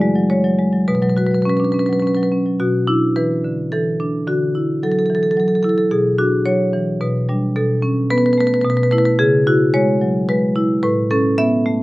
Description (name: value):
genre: classical, contemporary piece for solo marimba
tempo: 109 BPM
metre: 3/4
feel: rubato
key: B minor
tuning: A4 = 440 Hz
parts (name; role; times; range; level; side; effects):
- marimba with medium hard mallets; solo; 0.0-11.8 s; A2 to E5; -15 LUFS; equal; none
room: light reverb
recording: close, detailed microphones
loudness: -15 LUFS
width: side -19 dB against mid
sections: 0.0-2.6 A section; 2.6-11.8 B section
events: none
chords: 0.0 E9; 0.9 Bsus2; 2.6 Bm7; 4.3 Dadd9; 5.9 Bm; 7.6 Bsus2; 8.6 B7sus4; 9.2 C#m; 10.8 Aadd9